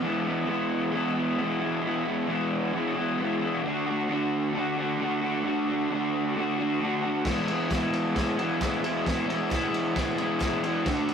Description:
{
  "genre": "garage rock duo or trio",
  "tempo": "133 BPM",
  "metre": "4/4",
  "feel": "straight",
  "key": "unclear",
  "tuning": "A4 = 440 Hz",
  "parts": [
    { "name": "combo organ", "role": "sustained chords", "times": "0.0-11.1 s", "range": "E4 to E5", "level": "-42 LUFS", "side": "right 1 dB", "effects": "none" },
    { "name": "raw garage guitar", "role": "riff", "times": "0.0-11.1 s", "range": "D3 to F#4", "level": "-25 LUFS", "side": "equal", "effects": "overdrive" },
    { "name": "crunchy breakbeat drum kit", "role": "drums", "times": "7.2-11.1 s", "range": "crash cymbal, kick drum, ride cymbal, snare drum", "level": "-33 LUFS", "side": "equal", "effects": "none" },
    { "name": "group handclap", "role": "percussion", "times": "7.7-10.5 s", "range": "none", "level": "-44 LUFS", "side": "right 2 dB", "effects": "none" }
  ],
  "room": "light reverb",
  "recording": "rough rehearsal-room recording",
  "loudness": "-25 LUFS",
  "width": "side -7 dB against mid",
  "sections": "0.0-11.1 A section",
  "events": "none",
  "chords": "0.0 E; 3.6 D; 7.3 E"
}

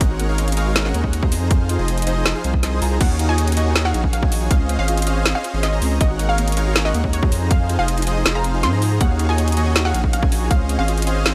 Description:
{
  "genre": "future bass",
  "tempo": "160 BPM",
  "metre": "4/4",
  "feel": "half-time",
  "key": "Db major",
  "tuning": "A4 = 441 Hz",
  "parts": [
    { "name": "soft round pluck", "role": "arpeggios", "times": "0.0-11.3 s", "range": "Bb3 to Ab4", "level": "-33 LUFS", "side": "equal", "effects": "ensemble chorus, sidechain pumping, tape echo" },
    { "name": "supersaw chords", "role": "riff", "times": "0.0-11.3 s", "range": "Eb3 to Bb5", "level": "-27 LUFS", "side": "equal", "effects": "sidechain pumping, tape echo" },
    { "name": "saturated sub bass", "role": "bass", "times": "0.0-11.3 s", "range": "F1 to Ab2", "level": "-22 LUFS", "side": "equal", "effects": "sidechain pumping" },
    { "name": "electronic kick drum", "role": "drums", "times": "0.0-10.6 s", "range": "none", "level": "-20 LUFS", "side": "equal", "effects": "none" },
    { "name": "trap drum kit", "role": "drums", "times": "0.0-11.3 s", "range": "crash cymbal, hi-hat, snare drum", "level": "-25 LUFS", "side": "equal", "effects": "none" },
    { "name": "unison pluck", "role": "melody", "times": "3.0-11.0 s", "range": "Db5 to C6", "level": "-29 LUFS", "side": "equal", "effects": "sidechain pumping, digital delay" }
  ],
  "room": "little or no reverb",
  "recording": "none",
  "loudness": "-19 LUFS",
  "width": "mono",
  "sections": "0.0-11.3 A section",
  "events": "none",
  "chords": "0.0 Ab9sus4; 1.3 Fm7; 3.0 Ebm11; 4.5 Dbmaj7; 6.0 Ab9sus4; 7.3 Fm7; 9.0 Ebm11; 10.5 Dbmaj7"
}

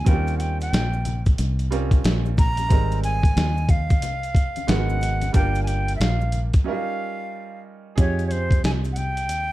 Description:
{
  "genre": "hip hop, jazz-hop",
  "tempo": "91 BPM",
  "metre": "4/4",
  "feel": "swing 62% on 16ths",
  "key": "unclear",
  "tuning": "A4 = 440 Hz",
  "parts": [
    { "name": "breathy silver concert flute", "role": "melody", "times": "0.0-9.5 s", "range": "C5 to Bb5", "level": "-28 LUFS", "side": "equal", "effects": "none" },
    { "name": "bright upright piano", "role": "accompaniment", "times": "0.0-9.5 s", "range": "C3 to Bb4", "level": "-31 LUFS", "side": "right 6 dB", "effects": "none" },
    { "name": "fingered electric bass", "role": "bass", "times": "0.0-9.5 s", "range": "G1 to F2", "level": "-24 LUFS", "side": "equal", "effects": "none" },
    { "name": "dusty soul sampler-style drum kit", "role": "drums", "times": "0.1-9.5 s", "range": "hi-hat, kick drum, snare drum", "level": "-20 LUFS", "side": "equal", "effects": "none" },
    { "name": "maracas and congas", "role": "percussion", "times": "0.1-9.5 s", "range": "none", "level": "-38 LUFS", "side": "left 7 dB", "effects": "none" }
  ],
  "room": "light reverb",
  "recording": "dark, warm production",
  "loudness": "-19 LUFS",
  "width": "side -16 dB against mid",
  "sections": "0.0-8.0 A section; 8.0-9.5 B section",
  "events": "break 6.7-8.0",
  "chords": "0.1 Eb13; 2.7 Abmaj9; 4.7 Abm7; 5.3 Gm7; 6.7 Eb9; 8.0 Fm9"
}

